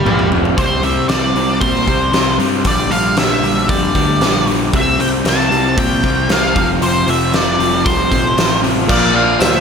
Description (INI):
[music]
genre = classic rock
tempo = 116 BPM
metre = 4/4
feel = straight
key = unclear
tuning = A4 = 441 Hz
[part]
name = octave-fuzz lead guitar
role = melody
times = 0.0-9.6 s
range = G3 to A5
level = -18 LUFS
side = equal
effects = wah, distortion, slapback echo
[part]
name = dark grand piano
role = accompaniment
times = 0.0-0.4, 8.9-9.6 s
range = F4 to F5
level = -26 LUFS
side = right 5 dB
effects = none
[part]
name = overdriven electric guitar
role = riff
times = 0.0-9.6 s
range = F2 to D4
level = -20 LUFS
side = right 9 dB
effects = slapback echo
[part]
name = overdriven semi-hollow guitar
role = riff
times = 0.0-9.6 s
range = F2 to C4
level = -19 LUFS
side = left 10 dB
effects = none
[part]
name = growling picked electric bass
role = bass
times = 0.0-9.6 s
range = F1 to Bb2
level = -22 LUFS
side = equal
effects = overdrive
[part]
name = big rock drum kit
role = drums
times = 0.1-9.5 s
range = crash cymbal, hi-hat, kick drum, snare drum, toms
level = -17 LUFS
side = right 1 dB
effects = none
[part]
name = smooth overdriven lead guitar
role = second line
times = 8.9-9.6 s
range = Bb4 to D5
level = -20 LUFS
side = right 3 dB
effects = slapback echo
[part]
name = overdriven electric guitar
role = riff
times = 8.9-9.6 s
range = Bb2 to F4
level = -21 LUFS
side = right 1 dB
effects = slapback echo
[part]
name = tambourine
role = percussion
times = 9.4-9.5 s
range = none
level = -28 LUFS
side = left 7 dB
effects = none
[sound]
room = moderate lush hall reverb, RT60 1.7 s, small room ambience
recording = big arena sound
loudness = -12 LUFS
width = side -6 dB against mid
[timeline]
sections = 0.6-8.9 A section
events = drum fill 0.0-0.6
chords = 0.0 Gm; 0.6 C5; 2.7 Gm/Bb; 4.7 C5; 6.6 F; 8.9 Bb